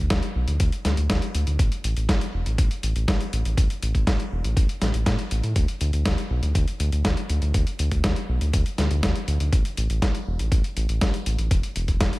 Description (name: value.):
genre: italo disco.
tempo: 121 BPM.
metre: 4/4.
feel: straight.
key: unclear.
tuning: A4 = 440 Hz.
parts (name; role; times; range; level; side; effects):
round analog bass; bass; 0.0-12.1 s; E1 to A2; -24 LUFS; equal; none.
dusty soul sampler-style drum kit; drums; 0.1-12.2 s; hi-hat, snare drum; -28 LUFS; left 1 dB; overdrive.
electronic kick drum; drums; 0.1-12.1 s; none; -23 LUFS; equal; overdrive.
room: little or no reverb.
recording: none.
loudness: -21 LUFS.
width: side -20 dB against mid.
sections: 0.0-12.2 A section.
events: none.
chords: none.